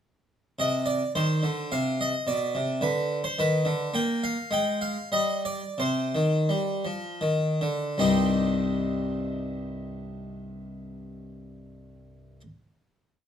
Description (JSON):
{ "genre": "classical, baroque-style suite movement for harpsichord", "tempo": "77-109 BPM", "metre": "3/4", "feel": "rubato", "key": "C minor", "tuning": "A4 = 440 Hz", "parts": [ { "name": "harpsichord", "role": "solo", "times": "0.6-12.4 s", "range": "C2 to G5", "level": "-25 LUFS", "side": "equal", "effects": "none" } ], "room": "moderate stone room reverb, RT60 0.9 s", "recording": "none", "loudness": "-24 LUFS", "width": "side -9 dB against mid", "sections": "0.6-8.0 A section; 8.0-12.3 final chord", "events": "slowing down 3.1-8.0", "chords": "0.6 Cm; 2.3 Bm; 3.9 N.C.; 5.8 Cm", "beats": "| 0.59 1.16 1.72 | 2.28 2.84 3.39 | 3.95 4.52 5.13 | 5.79 6.50 7.23 | 7.99 8.71 9.43 | 10.14 10.86 11.57" }